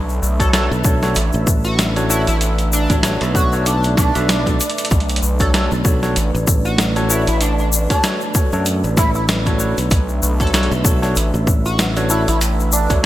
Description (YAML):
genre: glitch hop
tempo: 96 BPM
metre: 4/4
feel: swing 57% on 16ths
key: B minor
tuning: A4 = 441 Hz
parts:
  - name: dark analog pad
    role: sustained chords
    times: 0.0-13.1 s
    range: A3 to E5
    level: -26 LUFS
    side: right 1 dB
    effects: chorus, sidechain pumping
  - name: gritty driven synth bass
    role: bass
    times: 0.0-13.1 s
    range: A1 to B1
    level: -18 LUFS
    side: equal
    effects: overdrive
  - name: egg shaker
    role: percussion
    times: 0.1-13.0 s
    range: none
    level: -24 LUFS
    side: left 5 dB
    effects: none
  - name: sync lead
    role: melody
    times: 0.4-12.9 s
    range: D4 to A4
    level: -24 LUFS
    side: equal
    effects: lush chorus, digital delay
  - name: overdriven tine electric piano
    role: stabs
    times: 0.4-13.1 s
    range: D4 to E5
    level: -24 LUFS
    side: equal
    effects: sidechain pumping, digital delay
  - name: boom bap sampler-style drum kit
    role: drums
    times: 0.4-13.0 s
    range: hi-hat, snare drum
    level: -21 LUFS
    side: equal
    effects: gated reverb
  - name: electronic kick drum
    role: drums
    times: 0.4-13.0 s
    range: none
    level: -17 LUFS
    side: equal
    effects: overdrive
  - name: modern bright fingered electric bass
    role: bass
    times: 0.7-12.2 s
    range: A1 to F#2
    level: -19 LUFS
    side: equal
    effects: tube saturation
room: light reverb, digital ambience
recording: bright 1980s-style digital production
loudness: -14 LUFS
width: side -14 dB against mid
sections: 0.0-13.1 A section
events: drum fill 4.6-4.9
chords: 0.0 Bm9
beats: 0.54 1.16 1.79 | 2.41 3.04 3.66 4.29 | 4.91 5.54 6.16 6.79 | 7.41 8.04 8.66 9.29 | 9.91 10.54 11.16 11.79 | 12.41 13.04